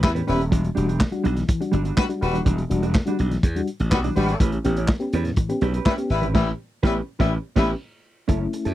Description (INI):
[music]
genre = disco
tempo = 124 BPM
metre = 4/4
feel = straight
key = unclear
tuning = A4 = 440 Hz
[part]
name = mellow electric guitar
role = accompaniment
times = 0.0-8.7 s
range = G3 to C#5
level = -28 LUFS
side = right 4 dB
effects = none
[part]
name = mellow reed electric piano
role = accompaniment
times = 0.0-8.7 s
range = A2 to G4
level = -27 LUFS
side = left 3 dB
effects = fast tremolo
[part]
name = warm horn section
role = stabs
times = 0.0-7.7 s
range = G3 to B4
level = -25 LUFS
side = left 3 dB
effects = none
[part]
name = slap bass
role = bass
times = 0.0-8.7 s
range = D#1 to F#2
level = -23 LUFS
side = equal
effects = none
[part]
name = vintage drum kit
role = drums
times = 0.0-8.7 s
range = crash cymbal, handclaps, hi-hat, kick drum, snare drum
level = -22 LUFS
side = equal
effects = none
[sound]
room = little or no reverb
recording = dry, close 1970s-style studio recording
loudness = -20 LUFS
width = side -14 dB against mid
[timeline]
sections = 0.0-8.3 A section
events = band accent 6.3-8.3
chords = 0.0 A9; 0.5 Em9; 4.4 A9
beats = 0.03 | 0.52 1.01 1.49 1.98 | 2.46 2.95 3.44 3.92 | 4.41 4.89 5.38 5.86 | 6.35 6.83 7.32 7.80 | 8.29